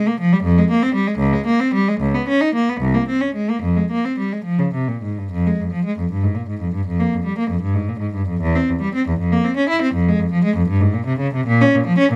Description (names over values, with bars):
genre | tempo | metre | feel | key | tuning
classical, baroque-style suite movement for unaccompanied cello | 66-82 BPM (dotted quarters) | 6/8 | rubato | F minor | A4 = 440 Hz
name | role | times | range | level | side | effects
rich cello | solo | 0.0-12.2 s | C2 to E4 | -19 LUFS | equal | none
room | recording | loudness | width
little or no reverb | close, detailed microphones | -19 LUFS | mono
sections
0.0-5.3 A section; 5.3-12.2 B section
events
none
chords
none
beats
| 0.44 1.19 | 2.01 2.81 | 3.62 4.45 | 5.31 6.11 | 6.87 7.62 | 8.41 9.19 | 9.94 10.68 | 11.47